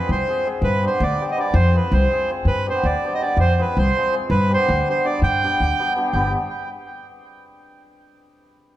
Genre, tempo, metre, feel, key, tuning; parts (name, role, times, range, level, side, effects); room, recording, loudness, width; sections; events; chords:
balkan folk, Balkan wedding band; 327 BPM (eighths); 5/8; straight; A4 = 440 Hz
accordion; melody; 0.0-6.3 s; B4 to G5; -22 LUFS; right 2 dB; tape echo
hammered dulcimer; accompaniment; 0.0-6.3 s; G3 to Ab4; -25 LUFS; left 1 dB
upright bass; bass; 0.1-6.3 s; G1 to G2; -20 LUFS; equal
moderate recital hall reverb, RT60 1.7 s; dark, warm production; -17 LUFS; side -14 dB against mid
0.0-6.1 A section
0.0 Fm; 0.6 G; 1.5 Fm; 2.5 G; 3.4 Fm; 4.3 G